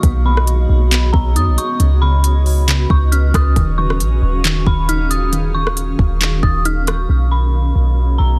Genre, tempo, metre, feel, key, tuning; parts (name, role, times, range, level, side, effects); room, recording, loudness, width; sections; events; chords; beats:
hip hop, atmospheric cloud-rap; 136 BPM; 4/4; half-time; B lydian; A4 = 440 Hz
dark detuned synth bell; melody; 0.0-8.4 s; A#5 to E#6; -25 LUFS; equal; chorus, phaser, low-pass filter, digital delay
granular cloud pad; sustained chords; 0.0-8.4 s; D#3 to E#5; -27 LUFS; equal; built-in reverb, sidechain pumping
soft round pluck; arpeggios; 0.0-7.1 s; C#3 to D#4; -28 LUFS; equal; chorus, low-pass filter, digital delay
clean 808-style bass; bass; 0.0-8.4 s; D#1 to F#2; -17 LUFS; equal
smooth R&B drum kit; drums; 0.0-7.0 s; handclaps, hi-hat, kick drum, rim click; -20 LUFS; equal; overdrive
little or no reverb; dense, heavily limited modern master; -15 LUFS; mono
0.0-7.1 A section; 7.1-8.4 B section
0.0 B69; 1.8 C#7sus4; 3.6 D#m11; 7.1 B69
| 0.03 0.47 0.92 1.36 | 1.80 2.24 2.68 3.12 | 3.56 4.00 4.45 4.89 | 5.33 5.77 6.21 6.65 | 7.09 7.53 7.97